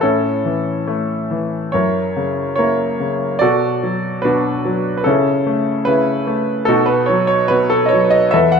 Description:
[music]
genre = classical, lyrical solo piano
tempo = 72 BPM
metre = 4/4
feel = rubato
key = A major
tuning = A4 = 441 Hz
[part]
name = clear grand piano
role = solo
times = 0.0-8.6 s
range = E2 to F#5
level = -14 LUFS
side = equal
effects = none
[sound]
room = moderate recital hall reverb, RT60 1.6 s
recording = close, detailed microphones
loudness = -14 LUFS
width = side -6 dB against mid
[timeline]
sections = 0.0-8.6 A section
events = none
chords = 0.0 A; 1.7 F#7; 3.4 Bm7; 5.1 A/C#; 6.7 B

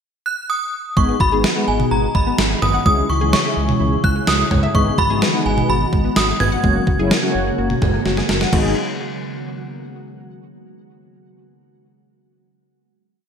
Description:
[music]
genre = synth-pop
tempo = 127 BPM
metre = 4/4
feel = straight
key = G# minor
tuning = A4 = 440 Hz
[part]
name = synth chime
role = melody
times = 0.3-8.0 s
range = G#5 to G#6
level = -21 LUFS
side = right 1 dB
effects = ensemble chorus, tremolo, ping-pong delay
[part]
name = mellow synth brass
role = accompaniment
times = 1.0-8.7 s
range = F#3 to G#4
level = -22 LUFS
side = left 2 dB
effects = chorus
[part]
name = glassy FM pad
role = sustained chords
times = 1.2-8.7 s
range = C#3 to G#4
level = -26 LUFS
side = equal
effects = ensemble chorus, built-in reverb
[part]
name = analog pluck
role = arpeggios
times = 1.0-8.7 s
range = G#3 to F#5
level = -26 LUFS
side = left 2 dB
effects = chorus, ping-pong delay
[part]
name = smooth gliding synth bass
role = bass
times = 1.0-8.7 s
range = F#1 to C#2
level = -22 LUFS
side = equal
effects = none
[part]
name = gated 80s digital drum machine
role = drums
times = 1.0-8.6 s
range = crash cymbal, kick drum, snare drum, toms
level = -19 LUFS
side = equal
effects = gated reverb, gated reverb snare, overdrive
[sound]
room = moderate plate reverb, RT60 1.5 s, digital ambience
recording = bright 1980s-style digital production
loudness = -15 LUFS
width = side -7 dB against mid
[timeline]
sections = 0.0-1.0 pickup bar; 1.0-8.5 verse; 8.5-10.4 final chord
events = drum fill 8.1-8.5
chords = 0.0 N.C.; 1.0 G#m7; 2.9 C#m; 4.7 G#m7; 6.6 F#add9; 8.5 G#m7

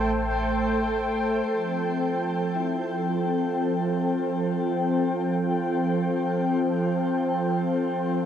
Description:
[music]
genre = ambient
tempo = free time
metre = none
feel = none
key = F major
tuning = A4 = 440 Hz
[part]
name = warm analog pad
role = sustained chords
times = 0.0-8.3 s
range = F3 to G5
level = -23 LUFS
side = equal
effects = chorus
[part]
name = concert harp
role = arpeggios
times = 0.0-5.4 s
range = E4 to A4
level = -43 LUFS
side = left 2 dB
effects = none
[part]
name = warm sub bass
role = bass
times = 0.0-1.4 s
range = A1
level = -32 LUFS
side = equal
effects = none
[sound]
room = wet shimmer reverb, RT60 7.5 s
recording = worn, warbling old tape, cassette tape, warbly pitch drift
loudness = -23 LUFS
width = side -9 dB against mid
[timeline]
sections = 0.0-1.5 A section; 1.5-8.3 B section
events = none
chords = 0.0 Am7; 1.5 Fadd9

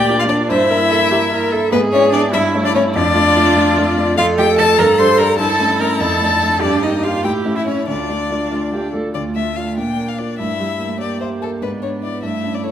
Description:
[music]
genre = quick classical-period movement for piano quartet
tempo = 98 BPM (dotted quarters)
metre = 6/8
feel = straight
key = D minor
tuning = A4 = 440 Hz
[part]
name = warm violin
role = melody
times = 0.0-12.7 s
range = A4 to C6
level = -19 LUFS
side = left 7 dB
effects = none
[part]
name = warm cello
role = second line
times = 0.0-12.7 s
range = G3 to C5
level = -19 LUFS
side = right 4 dB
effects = none
[part]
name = warm concert grand piano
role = accompaniment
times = 0.0-12.7 s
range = D2 to E5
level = -20 LUFS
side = left 1 dB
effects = none
[part]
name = warm viola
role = accompaniment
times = 0.0-12.7 s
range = D4 to D5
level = -20 LUFS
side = right 2 dB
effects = none
[sound]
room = wet recital hall reverb, RT60 1.4 s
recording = none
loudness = -14 LUFS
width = side -10 dB against mid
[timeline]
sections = 0.0-9.1 A section; 9.1-12.7 B section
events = none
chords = 0.5 Edim/G; 1.7 E7/G#; 2.3 A7/G; 3.0 Dm/F; 4.2 F7; 4.8 G5; 5.4 A7/G; 6.0 Dm/F; 6.6 Eb/G; 7.2 A7; 7.9 Dm; 9.8 Bb; 10.4 Edim/G; 11.6 E7/G#

